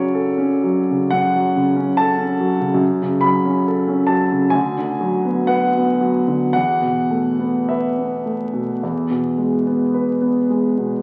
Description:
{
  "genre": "classical, romantic nocturne for solo piano",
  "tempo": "51-73 BPM",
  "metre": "4/4",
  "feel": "rubato",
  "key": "unclear",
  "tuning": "A4 = 440 Hz",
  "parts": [
    { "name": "warm concert grand piano", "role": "solo", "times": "0.0-11.0 s", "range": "D2 to B5", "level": "-18 LUFS", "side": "equal", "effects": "none" }
  ],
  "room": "wet scoring stage reverb, RT60 2.0 s",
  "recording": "very old 78 rpm record, vinyl crackle",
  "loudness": "-19 LUFS",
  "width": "mono",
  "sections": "0.0-11.0 A section",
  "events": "none",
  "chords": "0.0 F#m; 4.5 Bm/D; 6.5 Esus4; 8.8 E"
}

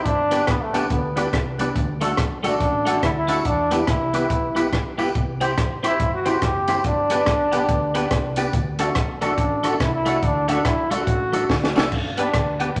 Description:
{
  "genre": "ska",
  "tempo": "142 BPM",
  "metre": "4/4",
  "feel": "swing 62% on 8ths",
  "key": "G major",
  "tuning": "A4 = 440 Hz",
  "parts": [
    { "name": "breathy trombone", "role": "melody", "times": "0.0-12.8 s", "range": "A3 to G4", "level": "-25 LUFS", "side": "equal", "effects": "none" },
    { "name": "hollow-body short-scale fingered electric bass", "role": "bass", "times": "0.1-12.8 s", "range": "F#1 to E2", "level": "-33 LUFS", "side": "equal", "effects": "none" },
    { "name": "compact cocktail drum kit", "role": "drums", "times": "0.1-12.8 s", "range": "crash cymbal, hi-hat, kick drum, rim click, snare drum", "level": "-26 LUFS", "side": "equal", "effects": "none" },
    { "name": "clean electric guitar", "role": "accompaniment", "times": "0.3-12.7 s", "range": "A3 to C5", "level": "-29 LUFS", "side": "equal", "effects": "phaser" },
    { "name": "percussive tonewheel organ", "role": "stabs", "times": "0.3-12.7 s", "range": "A3 to G4", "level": "-30 LUFS", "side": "equal", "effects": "overdrive, chorus vibrato, slow rotary speaker" },
    { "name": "tambourine", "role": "percussion", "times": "0.3-11.8 s", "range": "none", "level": "-47 LUFS", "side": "equal", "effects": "tape echo" }
  ],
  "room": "wet large studio reverb, RT60 1.3 s",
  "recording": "nothing above 10.5 kHz",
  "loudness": "-21 LUFS",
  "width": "mono",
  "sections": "0.0-11.9 A section",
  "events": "drum fill 11.5-11.9",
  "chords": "0.1 G; 1.8 D; 3.5 Em; 5.2 C; 6.8 G; 8.5 D; 11.9 G"
}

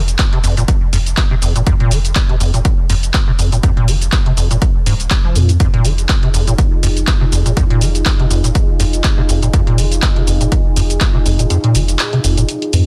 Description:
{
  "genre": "acid house",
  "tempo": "122 BPM",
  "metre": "4/4",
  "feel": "swing 55% on 16ths",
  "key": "F minor",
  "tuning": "A4 = 436 Hz",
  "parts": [
    { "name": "saturated sub bass", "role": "bass", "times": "0.0-12.9 s", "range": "Eb1 to F2", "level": "-18 LUFS", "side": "equal", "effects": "tube saturation, sidechain pumping" },
    { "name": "punchy analog drum machine", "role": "drums", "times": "0.1-12.8 s", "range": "handclaps, hi-hat, shaker", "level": "-23 LUFS", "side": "equal", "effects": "none" },
    { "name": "electronic kick drum", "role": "drums", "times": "0.2-11.1 s", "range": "none", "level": "-17 LUFS", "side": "equal", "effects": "none" },
    { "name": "deep acid bass", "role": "riff", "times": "0.3-12.9 s", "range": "F2 to F3", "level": "-20 LUFS", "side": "equal", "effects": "overdrive, subtle chorus, dub echo" },
    { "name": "dark analog pad", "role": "sustained chords", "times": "5.8-12.9 s", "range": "Eb4 to Ab4", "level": "-26 LUFS", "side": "equal", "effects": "chorus, sidechain pumping" }
  ],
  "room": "digital ambience",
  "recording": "dense, heavily limited modern master",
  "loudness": "-14 LUFS",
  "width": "mono",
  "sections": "0.0-12.9 A section",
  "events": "kick drops out 11.5-12.9",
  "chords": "0.0 Fm7"
}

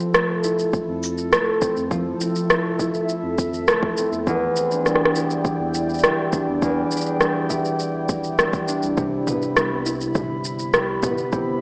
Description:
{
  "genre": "folktronica",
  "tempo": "102 BPM",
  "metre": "4/4",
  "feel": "straight",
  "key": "unclear",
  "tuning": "A4 = 438 Hz",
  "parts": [
    { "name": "warbly tape-like pad", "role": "sustained chords", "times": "0.0-11.6 s", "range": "E4 to B5", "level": "-30 LUFS", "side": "equal", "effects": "chorus, built-in reverb, cassette tape" },
    { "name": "concert harp", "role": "arpeggios", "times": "0.0-11.6 s", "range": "E2 to E4", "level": "-26 LUFS", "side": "equal", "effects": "cassette tape, analog delay" },
    { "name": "organic electronic drum kit", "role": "drums", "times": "0.0-11.4 s", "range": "rim click, shaker, toms", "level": "-24 LUFS", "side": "equal", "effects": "overdrive" },
    { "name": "warm sub bass", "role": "bass", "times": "0.3-11.5 s", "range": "E1 to F2", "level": "-36 LUFS", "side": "equal", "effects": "tube saturation" },
    { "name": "electronic kick drum", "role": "drums", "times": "0.7-11.4 s", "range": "none", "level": "-30 LUFS", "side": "equal", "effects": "overdrive" }
  ],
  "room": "wet spring reverb, RT60 1.6 s, digital ambience",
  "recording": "home recording on cassette, small speaker sound",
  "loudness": "-22 LUFS",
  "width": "mono",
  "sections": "0.0-11.6 A section",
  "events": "none",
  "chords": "0.0 Fmaj7; 4.3 Em7; 9.0 Cmaj7"
}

